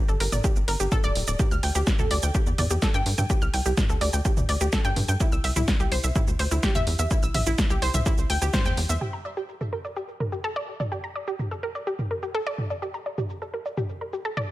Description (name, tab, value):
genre	melodic techno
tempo	126 BPM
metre	4/4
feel	straight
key	G dorian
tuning	A4 = 440 Hz
part	analog pluck	arpeggios	0.1-14.4 s	E4 to F6	-29 LUFS	equal	chorus, sidechain pumping, tape echo
part	tight sequencer bass	bass	0.1-9.0 s	D1 to G2	-26 LUFS	equal	sidechain pumping
part	punchy analog drum machine	drums	0.1-14.5 s	hi-hat, shaker, snare drum, toms	-29 LUFS	right 1 dB	overdrive, sidechain pumping on perc, low-pass filter on perc, sidechain pumping on toms, low-pass filter on toms, sidechain pumping on hats, low-pass filter on hats, low-pass filter on snare
part	electronic kick drum	drums	0.4-8.6 s	none	-24 LUFS	equal	none
room	light reverb, digital ambience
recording	none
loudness	-23 LUFS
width	side -16 dB against mid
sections	0.0-9.0 A section; 9.0-14.5 B section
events	band accent 8.5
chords	0.0 Gmadd9; 1.4 Dsus4; 5.2 C; 9.0 Gmadd9